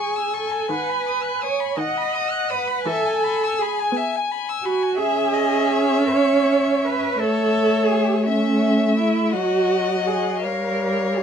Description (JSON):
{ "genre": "classical, slow romantic movement for string quartet", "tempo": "56 BPM (dotted quarters)", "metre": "6/8", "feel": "uneven beats, rubato", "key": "E major, C# minor from 5.0 s", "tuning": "A4 = 440 Hz", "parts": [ { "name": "warm violin", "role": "melody", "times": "0.0-11.2 s", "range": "C#5 to G#5", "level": "-26 LUFS", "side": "left 10 dB", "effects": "none" }, { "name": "warm violin", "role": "second line", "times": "0.0-11.2 s", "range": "Db5 to F#6", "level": "-26 LUFS", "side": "left 3 dB", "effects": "none" }, { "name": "warm viola", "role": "accompaniment", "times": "0.0-11.2 s", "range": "D#3 to C#4", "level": "-22 LUFS", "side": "right 1 dB", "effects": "none" }, { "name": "warm cello", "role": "bass", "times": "0.0-11.2 s", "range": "C#4 to D#5", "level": "-22 LUFS", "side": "right 4 dB", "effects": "none" } ], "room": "moderate studio reverb, RT60 0.5 s", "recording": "dark, warm production", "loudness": "-18 LUFS", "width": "side -7 dB against mid", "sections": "0.0-11.2 A section", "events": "none", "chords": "0.0 C#m; 0.7 B/D#; 2.9 E; 5.0 C#m; 7.2 A; 9.3 D#madd11/F#; 10.4 Gm7b5", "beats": "| 0.71 1.78 | 2.86 3.93 | 4.98 6.13 | 7.20 8.26 | 9.34 10.43" }